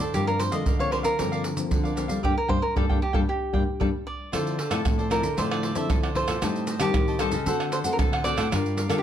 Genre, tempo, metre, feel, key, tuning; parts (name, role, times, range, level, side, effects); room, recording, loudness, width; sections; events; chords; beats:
samba and choro; 115 BPM; 4/4; straight; G minor, D minor from 4.3 s; A4 = 439 Hz
cavaquinho; accompaniment; 0.0-9.0 s; D4 to A5; -33 LUFS; right 2 dB
nylon-string guitar; accompaniment; 0.0-9.0 s; G2 to Bb4; -30 LUFS; left 7 dB
nylon-string guitar; bass; 0.0-9.0 s; G2 to G3; -30 LUFS; right 1 dB
maracas, pandeiro, surdo and tamborim; percussion; 0.0-9.0 s; -27 LUFS; right 1 dB
cavaquinho; melody; 0.1-9.0 s; G4 to E5; -28 LUFS; equal; plate reverb
light reverb; -22 LUFS; side -10 dB against mid
0.0-4.3 A section; 4.3-9.0 B section
band accent 2.2-4.3
0.1 Gm7; 4.3 Dm9; 6.4 Am7b5; 7.5 D7; 8.5 Gm7
| 0.14 0.66 1.19 1.71 | 2.23 2.76 3.28 3.80 | 4.33 4.85 5.38 5.90 | 6.42 6.95 7.47 7.99 | 8.52